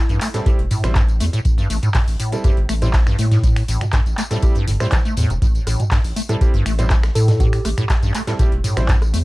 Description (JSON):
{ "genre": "acid house", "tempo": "121 BPM", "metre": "4/4", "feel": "straight", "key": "A minor pentatonic", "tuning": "A4 = 440 Hz", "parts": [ { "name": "deep acid bass", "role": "riff", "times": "0.1-9.2 s", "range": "A1 to A3", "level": "-23 LUFS", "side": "equal", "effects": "lush chorus, tape echo" }, { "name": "saturated sub bass", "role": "bass", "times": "0.1-9.2 s", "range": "E1 to A2", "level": "-20 LUFS", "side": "equal", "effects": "sidechain pumping" }, { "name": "booming analog drum machine", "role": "drums", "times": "0.1-9.2 s", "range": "finger snaps, handclaps, hi-hat, rim click, tambourine, toms", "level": "-24 LUFS", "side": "equal", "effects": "none" }, { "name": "modern studio drum kit", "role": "drums", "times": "0.1-9.2 s", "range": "hi-hat, snare drum", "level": "-38 LUFS", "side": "left 2 dB", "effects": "sidechain pumping on hats, high-pass filter on hats, high-pass filter on snare, high-pass filter on room" }, { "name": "bright grand piano", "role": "stabs", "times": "0.3-8.9 s", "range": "G3 to C5", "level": "-27 LUFS", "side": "right 3 dB", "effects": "tape echo" }, { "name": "electronic kick drum", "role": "drums", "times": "0.5-9.0 s", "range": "none", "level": "-17 LUFS", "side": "equal", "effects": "none" }, { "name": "thumb-piano-like synth pluck", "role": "melody", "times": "7.2-7.8 s", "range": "G4 to A4", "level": "-30 LUFS", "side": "equal", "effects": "chorus, tape echo" } ], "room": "little or no reverb", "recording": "dark, warm production", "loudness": "-15 LUFS", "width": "side -20 dB against mid", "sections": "0.0-9.2 A section", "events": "none", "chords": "0.0 Am7", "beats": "0.46 0.96 | 1.45 1.95 2.44 2.94 | 3.44 3.93 4.43 4.92 | 5.42 5.92 6.41 6.91 | 7.40 7.90 8.39 8.89" }